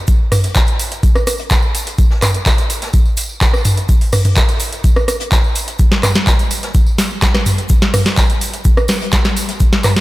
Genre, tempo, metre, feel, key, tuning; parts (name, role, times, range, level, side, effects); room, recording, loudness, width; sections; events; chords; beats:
house; 126 BPM; 4/4; straight
booming analog drum machine; drums; 0.1-10.0 s; handclaps, hi-hat, rim click, snare drum, toms; -16 LUFS; equal; overdrive
electronic kick drum; drums; 0.1-9.7 s; -13 LUFS; equal; overdrive
jazz brush drum kit; drums; 0.1-10.0 s; hi-hat, shaker, snare drum; -29 LUFS; left 2 dB; sidechain pumping on hats, high-pass filter on hats, high-pass filter on snare, sidechain pumping on perc, high-pass filter on perc, high-pass filter on room
tambourine; percussion; 0.1-10.0 s; -28 LUFS; right 1 dB
light reverb, studio reverb; -12 LUFS; side -18 dB against mid
0.0-10.0 A section
| 0.08 0.56 1.03 1.51 | 1.99 2.46 2.94 3.41 | 3.89 4.37 4.84 5.32 | 5.79 6.27 6.75 7.22 | 7.70 8.18 8.65 9.13 | 9.60